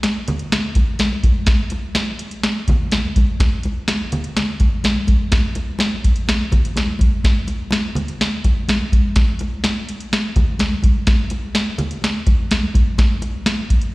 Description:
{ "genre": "soul", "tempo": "125 BPM", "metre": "4/4", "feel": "straight", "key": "none", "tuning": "none", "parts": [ { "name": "soft vintage rhythm box", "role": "drums", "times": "0.0-13.9 s", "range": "hi-hat, kick drum, snare drum", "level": "-16 LUFS", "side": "equal", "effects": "none" }, { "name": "congas", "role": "percussion", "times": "0.0-13.6 s", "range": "none", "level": "-25 LUFS", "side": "equal", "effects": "slapback echo" } ], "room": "light reverb", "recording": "live gig heard through the venue's PA, recital hall reverb", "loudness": "-16 LUFS", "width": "side -21 dB against mid", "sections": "0.0-13.9 A section", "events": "none", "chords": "none" }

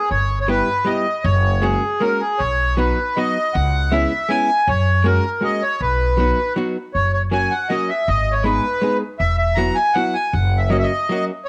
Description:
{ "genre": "musette waltz", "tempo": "159 BPM", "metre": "3/4", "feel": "rubato", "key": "unclear", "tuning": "A4 = 441 Hz", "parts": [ { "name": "accordion", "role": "melody", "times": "0.0-11.5 s", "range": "G#4 to A#5", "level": "-21 LUFS", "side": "equal", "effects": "cassette tape" }, { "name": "upright bass", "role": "bass", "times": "0.1-10.8 s", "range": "E1 to F#2", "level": "-22 LUFS", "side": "equal", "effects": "none" }, { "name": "archtop guitar, miked and amplified", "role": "accompaniment", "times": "0.5-11.3 s", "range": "F#3 to G#4", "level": "-26 LUFS", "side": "equal", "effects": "none" } ], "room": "light reverb, small room ambience", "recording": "home recording on cassette", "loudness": "-19 LUFS", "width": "mono", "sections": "0.0-11.5 A section", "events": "none", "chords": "0.1 Em/G; 1.2 F#add9; 2.4 B; 3.6 C#m7; 4.7 F#add9; 5.8 B; 7.0 F#; 8.1 G#m; 9.2 Esus2; 10.3 F#" }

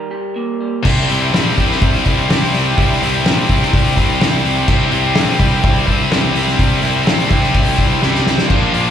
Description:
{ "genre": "quiet-loud alternative rock", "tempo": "126 BPM", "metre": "4/4", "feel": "straight", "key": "C mixolydian", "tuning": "A4 = 441 Hz", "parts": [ { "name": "electric guitar through a small old amp", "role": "arpeggios", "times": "0.0-0.8 s", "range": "Eb3 to Bb4", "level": "-21 LUFS", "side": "right 4 dB", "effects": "slapback echo" }, { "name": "percussive tonewheel organ", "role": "sustained chords", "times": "0.8-8.9 s", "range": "E4 to G5", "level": "-27 LUFS", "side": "right 2 dB", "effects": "overdrive, lush chorus" }, { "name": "tight distorted guitar", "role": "riff", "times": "0.8-8.9 s", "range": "Bb2 to E4", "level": "-17 LUFS", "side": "left 10 dB", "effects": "distortion, slapback echo" }, { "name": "fuzz picked electric bass", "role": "bass", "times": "0.8-8.9 s", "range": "Bb1 to C2", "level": "-19 LUFS", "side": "right 1 dB", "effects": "overdrive" }, { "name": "loose indie drum kit", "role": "drums", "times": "0.8-8.8 s", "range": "crash cymbal, hi-hat, kick drum, snare drum", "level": "-16 LUFS", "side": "equal", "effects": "none" }, { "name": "high-gain distorted guitar", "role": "riff", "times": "0.9-8.9 s", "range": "Bb2 to E4", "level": "-20 LUFS", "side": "right 13 dB", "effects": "distortion, slapback echo" } ], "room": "studio reverb", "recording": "live gig heard through the venue's PA, club reverb", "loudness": "-12 LUFS", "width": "side -9 dB against mid", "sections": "0.9-8.9 A section", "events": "drum fill 8.0-8.5", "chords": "0.0 Eb; 0.9 Cadd9" }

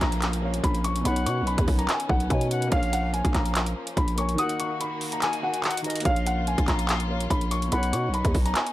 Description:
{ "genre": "hip hop, trap", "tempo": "144 BPM", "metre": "4/4", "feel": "half-time", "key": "Bb phrygian", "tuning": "A4 = 440 Hz", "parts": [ { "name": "dark baby grand piano", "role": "melody", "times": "0.0-8.7 s", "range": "F5 to Eb6", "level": "-30 LUFS", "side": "left 1 dB", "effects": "tape echo" }, { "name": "clear concert grand piano", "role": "accompaniment", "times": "0.0-8.7 s", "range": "B2 to Ab5", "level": "-34 LUFS", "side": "right 1 dB", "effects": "none" }, { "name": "dark chamber string section", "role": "sustained chords", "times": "0.0-8.7 s", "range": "D#3 to Gb4", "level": "-35 LUFS", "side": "left 2 dB", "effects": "none" }, { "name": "growling 808-style bass", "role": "bass", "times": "0.0-8.5 s", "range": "Bb1 to B2", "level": "-26 LUFS", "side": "equal", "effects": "none" }, { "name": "trap drum kit", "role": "drums", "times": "0.0-8.7 s", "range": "handclaps, hi-hat, kick drum", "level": "-26 LUFS", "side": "equal", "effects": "none" }, { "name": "downlifter", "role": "sound effects", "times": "0.0-2.7 s", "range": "none", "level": "-43 LUFS", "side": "right 2 dB", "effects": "none" }, { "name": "reedy silver concert flute", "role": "second line", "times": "1.1-8.1 s", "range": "Eb5 to Ab5", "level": "-34 LUFS", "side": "left 3 dB", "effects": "tape echo" } ], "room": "small room ambience", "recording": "dry, gritty hardware recording", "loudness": "-23 LUFS", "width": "side -15 dB against mid", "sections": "0.0-8.7 A section", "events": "kick muted 4.4-6.1", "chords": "0.0 Bbm; 1.1 Badd9; 2.7 Bbm; 4.4 Ebm; 6.1 Bbm; 7.7 Badd9" }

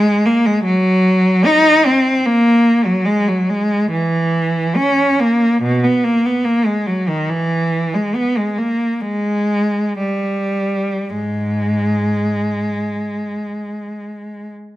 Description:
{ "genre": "classical, free, expressive piece for unaccompanied cello", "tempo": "50-76 BPM", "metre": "4/4", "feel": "rubato", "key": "G# minor", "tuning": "A4 = 441 Hz", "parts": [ { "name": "rich cello", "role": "solo", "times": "0.0-14.5 s", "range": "G#2 to D#4", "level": "-14 LUFS", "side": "equal", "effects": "none" } ], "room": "moderate recital hall reverb, RT60 1.3 s", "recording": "close, detailed microphones", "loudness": "-14 LUFS", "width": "side -15 dB against mid", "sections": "0.0-14.8 A section", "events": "none", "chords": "none" }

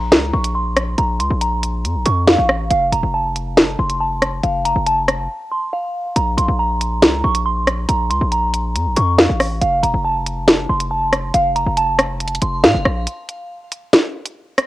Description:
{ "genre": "hip hop, drill", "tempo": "139 BPM", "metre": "4/4", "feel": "half-time", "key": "unclear", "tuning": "A4 = 440 Hz", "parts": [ { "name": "glassy synth bell", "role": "melody", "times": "0.0-13.0 s", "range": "F5 to Db6", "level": "-19 LUFS", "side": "right 1 dB", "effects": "chorus, phaser, low-pass filter, cassette tape, tape echo" }, { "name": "hard-hitting 808-style bass", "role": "bass", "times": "0.0-13.1 s", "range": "Eb1 to A2", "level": "-20 LUFS", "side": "equal", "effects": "none" }, { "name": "drill drum kit", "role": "drums", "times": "0.1-14.7 s", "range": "hi-hat, rim click, snare drum", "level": "-14 LUFS", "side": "equal", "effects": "cassette tape" } ], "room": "digital ambience", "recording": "home recording on cassette", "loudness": "-15 LUFS", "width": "side -16 dB against mid", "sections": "0.0-14.7 A section", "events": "filter sweep on synth bell 0.0-13.1; break 5.3-6.2, 13.1-14.7", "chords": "0.0 Bbsus2; 2.7 F; 6.2 Bbsus2; 9.6 F; 13.1 N.C." }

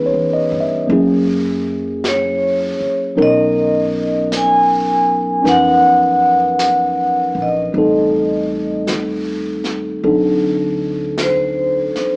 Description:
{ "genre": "jazz ballad", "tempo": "52 BPM", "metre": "4/4", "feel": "swing 66% on 8ths", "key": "unclear", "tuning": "A4 = 435 Hz", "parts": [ { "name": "tine electric piano", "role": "accompaniment", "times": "0.0-12.2 s", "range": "Fb3 to Fb5", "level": "-16 LUFS", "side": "equal", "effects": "phaser" }, { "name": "upright bass", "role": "bass", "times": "0.0-12.0 s", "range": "A1 to G2", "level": "-29 LUFS", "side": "equal", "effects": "none" }, { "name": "jazz brush drum kit", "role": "drums", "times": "0.9-12.2 s", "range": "brushed snare drum, hi-hat, snare drum", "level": "-28 LUFS", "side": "equal", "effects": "none" }, { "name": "vibraphone with medium hard mallets", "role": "melody", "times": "2.1-12.2 s", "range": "C5 to Ab5", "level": "-15 LUFS", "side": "equal", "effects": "none" } ], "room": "moderate large studio reverb, RT60 1.2 s", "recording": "band playing live in one room, small speaker sound", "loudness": "-13 LUFS", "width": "side -35 dB against mid", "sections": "0.0-12.2 A section", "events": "none", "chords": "0.0 Dbm9; 0.9 Gb9; 3.2 Bmaj9; 7.7 Am7b5; 10.0 D7b9" }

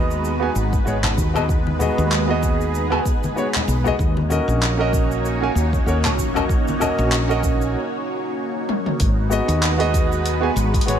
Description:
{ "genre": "sunset chillout", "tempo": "96 BPM", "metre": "4/4", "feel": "swing 56% on 16ths", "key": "G# minor", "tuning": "A4 = 440 Hz", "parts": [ { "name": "warm grand piano", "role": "accompaniment", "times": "0.0-11.0 s", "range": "B3 to G#5", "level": "-23 LUFS", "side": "moving between left 6 dB and right 6 dB", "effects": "auto-pan, tape echo" }, { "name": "lush unison pad", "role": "sustained chords", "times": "0.0-11.0 s", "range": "G#3 to C#5", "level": "-25 LUFS", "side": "equal", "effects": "chorus, phaser" }, { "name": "woody fretless electric bass", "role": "bass", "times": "0.0-11.0 s", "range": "G#1 to D#2", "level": "-22 LUFS", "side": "equal", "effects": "tube saturation" }, { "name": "deep house drum kit", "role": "drums", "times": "0.1-11.0 s", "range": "cabasa, handclaps, hi-hat, toms, woodblock", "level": "-26 LUFS", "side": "left 1 dB", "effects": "none" }, { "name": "electronic kick drum", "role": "drums", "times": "0.7-10.8 s", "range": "none", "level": "-21 LUFS", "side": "equal", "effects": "none" }, { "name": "congas", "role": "percussion", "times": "1.0-7.0 s", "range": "none", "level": "-28 LUFS", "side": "left 1 dB", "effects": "none" } ], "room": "light reverb, digital ambience", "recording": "none", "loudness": "-17 LUFS", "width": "side -9 dB against mid", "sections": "0.0-9.0 A section; 9.0-11.0 B section", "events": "break 7.7-9.0; drum fill 8.7-9.0", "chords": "0.0 G#m7; 4.0 D#m7; 9.0 G#m7" }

